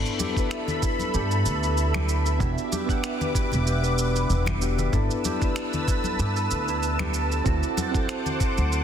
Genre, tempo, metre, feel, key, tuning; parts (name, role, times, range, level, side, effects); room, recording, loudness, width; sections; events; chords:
sunset chillout; 95 BPM; 4/4; swing 54% on 16ths; G major; A4 = 441 Hz
soft electric-piano-like synth keys; accompaniment; 0.0-8.8 s; B3 to F#5; -30 LUFS; moving between left 6 dB and right 8 dB; chorus, auto-pan, ping-pong delay
lush unison pad; sustained chords; 0.0-8.8 s; A4 to E6; -30 LUFS; equal; chorus, phaser
concert harp; arpeggios; 0.0-8.8 s; E4 to C5; -35 LUFS; right 1 dB; low-pass filter, ping-pong delay
upright bass; bass; 0.0-8.8 s; E1 to G2; -25 LUFS; equal
electronic cabasa and finger snaps; drums; 0.1-8.8 s; -33 LUFS; right 3 dB; soft clipping on snare
congas; percussion; 0.2-8.7 s; -34 LUFS; left 3 dB
electronic kick drum; drums; 0.4-8.5 s; -26 LUFS; equal
light reverb, digital ambience; dense, heavily limited modern master; -22 LUFS; side -8 dB against mid
0.0-8.8 A section
filter sweep on harp 0.0-8.8
0.0 G69; 2.4 Em7; 4.9 G69; 7.5 D7